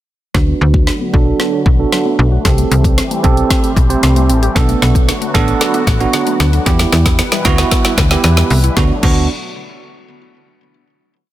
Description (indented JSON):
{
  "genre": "dance-pop",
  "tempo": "114 BPM",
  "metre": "4/4",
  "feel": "straight",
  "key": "D mixolydian",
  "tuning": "A4 = 440 Hz",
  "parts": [
    { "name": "bell-like tine electric piano", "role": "accompaniment", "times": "0.3-9.3 s", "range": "B3 to C5", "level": "-18 LUFS", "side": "right 6 dB", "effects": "sidechain pumping, low-pass filter" },
    { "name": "filtered supersaw swell", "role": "sustained chords", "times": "0.3-9.0 s", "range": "B2 to B4", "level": "-22 LUFS", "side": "left 1 dB", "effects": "sidechain pumping, low-pass filter" },
    { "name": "mallet-like synth pluck", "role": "arpeggios", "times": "0.3-9.3 s", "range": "D3 to G4", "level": "-25 LUFS", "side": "left 3 dB", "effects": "none" },
    { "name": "slap-like FM bass", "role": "bass", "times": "0.3-9.3 s", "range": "A1 to E2", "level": "-13 LUFS", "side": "equal", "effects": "sidechain pumping" },
    { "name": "deep house drum kit", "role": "drums", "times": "0.3-9.2 s", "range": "crash cymbal, hi-hat, kick drum, snare drum", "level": "-14 LUFS", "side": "equal", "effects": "none" }
  ],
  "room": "little or no reverb",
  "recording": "dense, heavily limited modern master",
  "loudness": "-10 LUFS",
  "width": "side -14 dB against mid",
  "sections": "0.3-8.8 build; 8.8-10.9 final chord",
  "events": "build-up 0.3-8.8; drum fill 0.3-8.8; filter sweep 0.3-8.8",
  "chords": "0.3 D6; 2.5 Am7; 4.6 Bm7; 6.7 Em; 8.8 D6"
}